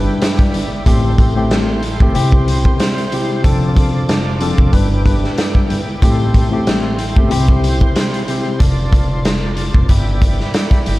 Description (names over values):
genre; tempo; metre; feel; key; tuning
hip hop, boom-bap hip-hop; 93 BPM; 4/4; swing 55% on 16ths; A minor; A4 = 440 Hz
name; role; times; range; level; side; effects
tine electric piano; accompaniment; 0.0-8.6 s; G2 to B4; -19 LUFS; left 2 dB; medium stereo tremolo, cassette tape, high-pass filter, low-pass filter
tonewheel organ; sustained chords; 0.0-11.0 s; E4 to D6; -25 LUFS; right 1 dB; chorus vibrato, lush chorus, high-pass filter, low-pass filter
upright bass; bass; 0.0-11.0 s; F1 to C2; -18 LUFS; equal; none
raw garage drum kit; drums; 0.2-11.0 s; hi-hat, kick drum, snare drum; -14 LUFS; equal; none
room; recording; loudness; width
small room ambience; vinyl crackle; -12 LUFS; side -18 dB against mid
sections
0.0-11.0 A section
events
none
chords
0.0 Em7/G; 0.9 Am7; 2.2 C; 3.4 F6; 4.7 Em7/G; 6.0 Am7; 7.3 C; 8.6 F6; 9.9 Em7/G